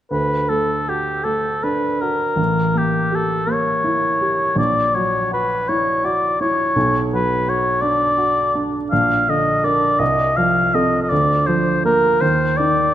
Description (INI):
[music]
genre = classical, romantic duo for oboe and grand piano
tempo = 54 BPM (dotted quarters)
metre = 6/8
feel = rubato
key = D major, Bb major from 8.9 s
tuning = A4 = 438 Hz
[part]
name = mellow oboe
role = melody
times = 0.1-12.9 s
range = G4 to F5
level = -18 LUFS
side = left 1 dB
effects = none
[part]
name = warm grand piano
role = accompaniment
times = 0.1-12.9 s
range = A1 to Bb4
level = -20 LUFS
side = right 2 dB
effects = none
[sound]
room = moderate scoring stage reverb, RT60 2.0 s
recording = none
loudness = -16 LUFS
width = side -11 dB against mid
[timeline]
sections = 0.1-12.9 A section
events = none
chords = 0.1 D; 2.4 A7b9; 4.6 F#7/A#; 6.8 Bm; 8.9 Bb; 10.0 F/C; 11.1 Bb/D; 12.2 Eb5